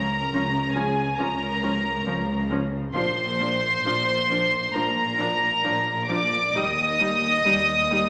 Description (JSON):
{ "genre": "classical, slow romantic movement for string orchestra", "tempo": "67 BPM", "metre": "4/4", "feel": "rubato", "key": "Bb major", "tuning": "A4 = 440 Hz", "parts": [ { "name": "warm studio violin section", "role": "melody", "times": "0.0-8.1 s", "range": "Ab5 to Eb6", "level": "-25 LUFS", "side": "equal", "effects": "none" }, { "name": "warm studio violin section", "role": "second line", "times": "0.0-8.1 s", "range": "Ab4 to Eb5", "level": "-32 LUFS", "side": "equal", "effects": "none" }, { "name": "warm studio cello section", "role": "bass", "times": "0.0-8.1 s", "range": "Eb2 to Db3", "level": "-35 LUFS", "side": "equal", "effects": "none" }, { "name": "warm studio double bass section", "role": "bass", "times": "0.0-8.1 s", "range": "Bb1 to Eb2", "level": "-34 LUFS", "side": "equal", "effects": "none" }, { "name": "warm studio viola section", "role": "accompaniment", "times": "0.3-8.0 s", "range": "F3 to Eb4", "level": "-32 LUFS", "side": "equal", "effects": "none" } ], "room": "wet recital hall reverb, RT60 1.4 s", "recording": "none", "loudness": "-23 LUFS", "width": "mono", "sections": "0.0-8.1 A section", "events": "none", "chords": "0.0 Bbm/Db; 3.0 Bb; 6.6 Eb", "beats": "0.33 1.19 2.07 | 2.96 3.86 4.75 5.65 | 6.56 7.46" }